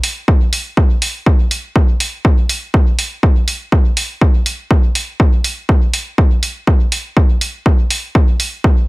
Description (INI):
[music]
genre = techno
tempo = 122 BPM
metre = 4/4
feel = straight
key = none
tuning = none
[part]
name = electronic hi-hat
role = drums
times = 0.0-8.5 s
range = none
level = -18 LUFS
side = right 1 dB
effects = none
[part]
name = electronic kick drum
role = drums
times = 0.3-8.7 s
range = none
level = -11 LUFS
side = equal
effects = none
[sound]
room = little or no reverb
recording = none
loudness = -12 LUFS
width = side -22 dB against mid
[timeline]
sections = 0.0-8.9 A section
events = none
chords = none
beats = | 0.28 0.77 1.26 1.76 | 2.25 2.74 3.23 3.72 | 4.22 4.71 5.20 5.69 | 6.18 6.67 7.17 7.66 | 8.15 8.64